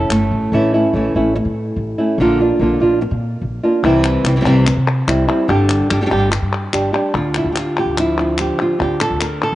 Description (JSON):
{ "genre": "flamenco", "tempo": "145 BPM", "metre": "4/4", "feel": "straight", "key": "unclear", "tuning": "A4 = 439 Hz", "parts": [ { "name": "flamenco guitar", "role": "melody", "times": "0.0-9.6 s", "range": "A2 to Bb4", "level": "-15 LUFS", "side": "equal", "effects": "cassette tape" }, { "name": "upright bass", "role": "bass", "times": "0.0-9.6 s", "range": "G1 to C3", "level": "-20 LUFS", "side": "equal", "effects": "none" }, { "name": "palmas hand claps", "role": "percussion", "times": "0.1-0.3, 3.8-9.6 s", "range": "none", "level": "-23 LUFS", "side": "left 4 dB", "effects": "none" } ], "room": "moderate spring reverb, RT60 2.6 s", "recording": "home recording on cassette, nothing above 10.7 kHz", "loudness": "-14 LUFS", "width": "side -15 dB against mid", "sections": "0.5-7.2 A section; 7.2-9.6 B section", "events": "none", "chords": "0.0 A7; 0.5 A; 2.2 Bb; 3.8 C; 5.5 G5; 7.2 Dm" }